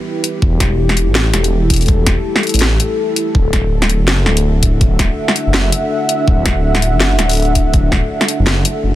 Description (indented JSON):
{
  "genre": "half-time drum and bass",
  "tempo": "164 BPM",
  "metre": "4/4",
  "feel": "swing 59% on 16ths, half-time",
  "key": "unclear",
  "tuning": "A4 = 437 Hz",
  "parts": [
    { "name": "dark analog pad", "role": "sustained chords", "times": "0.0-8.9 s", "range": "D4 to F#5", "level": "-19 LUFS", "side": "left 1 dB", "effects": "chorus, sidechain pumping" },
    { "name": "drum and bass drum kit", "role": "drums", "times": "0.2-8.7 s", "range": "hi-hat, snare drum", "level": "-17 LUFS", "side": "left 1 dB", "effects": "soft clipping on snare" },
    { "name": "dark detuned saw bass", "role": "bass", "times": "0.4-8.9 s", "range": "D1 to A1", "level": "-15 LUFS", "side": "equal", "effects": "none" },
    { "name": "electronic kick drum", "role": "drums", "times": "0.4-8.0 s", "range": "none", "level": "-14 LUFS", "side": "equal", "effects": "none" }
  ],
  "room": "digital ambience",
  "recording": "dense, heavily limited modern master",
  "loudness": "-12 LUFS",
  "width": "side -14 dB against mid",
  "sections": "0.0-8.9 A section",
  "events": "none",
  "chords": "0.0 Em; 3.3 D",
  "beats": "0.06 | 0.42 0.79 1.15 1.52 | 1.89 2.25 2.62 2.98 | 3.35 3.71 4.08 4.45 | 4.81 5.18 5.54 5.91 | 6.28 6.64 7.01 7.37 | 7.74 8.10 8.47 8.84"
}